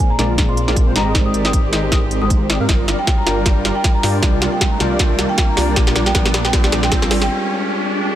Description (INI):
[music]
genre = future bass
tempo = 156 BPM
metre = 4/4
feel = swing 56% on 16ths, half-time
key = Ab lydian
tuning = A4 = 440 Hz
[part]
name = marimba with medium hard mallets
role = melody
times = 0.0-7.3 s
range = G5 to Eb6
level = -25 LUFS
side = equal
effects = sidechain pumping, dub echo
[part]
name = tine electric piano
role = accompaniment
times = 0.0-8.2 s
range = Bb2 to G5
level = -24 LUFS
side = left 1 dB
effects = medium stereo tremolo, sidechain pumping
[part]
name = rich chamber string section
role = sustained chords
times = 0.0-8.2 s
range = C3 to Bb4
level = -30 LUFS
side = right 1 dB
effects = sidechain pumping
[part]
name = trap drum kit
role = drums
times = 0.0-7.3 s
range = hi-hat, snare drum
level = -20 LUFS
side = equal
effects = high-pass filter on snare, high-pass filter on hats
[part]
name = riser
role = sound effects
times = 0.1-8.2 s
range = none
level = -27 LUFS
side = equal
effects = none
[part]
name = big bright polysynth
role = riff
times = 0.2-7.2 s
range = G3 to F5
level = -23 LUFS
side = right 1 dB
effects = ensemble chorus, sidechain pumping
[part]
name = wide detuned saw bass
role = bass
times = 0.2-7.3 s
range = G1 to Ab2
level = -22 LUFS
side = equal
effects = chorus, sidechain pumping
[part]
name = electronic kick drum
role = drums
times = 0.4-7.0 s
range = none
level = -17 LUFS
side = equal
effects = none
[sound]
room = light reverb, digital ambience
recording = none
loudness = -14 LUFS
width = side -12 dB against mid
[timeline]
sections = 0.0-8.2 A section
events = build-up 0.0-8.2; drum fill 0.0-7.3; filter sweep on analog polysynth 0.0-8.2; riser 0.1-8.2; break 7.3-8.2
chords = 0.0 Bb9; 1.0 Abmaj9#11; 2.7 Gm7; 4.2 Cm9; 5.8 Bb; 7.1 Abmaj9#11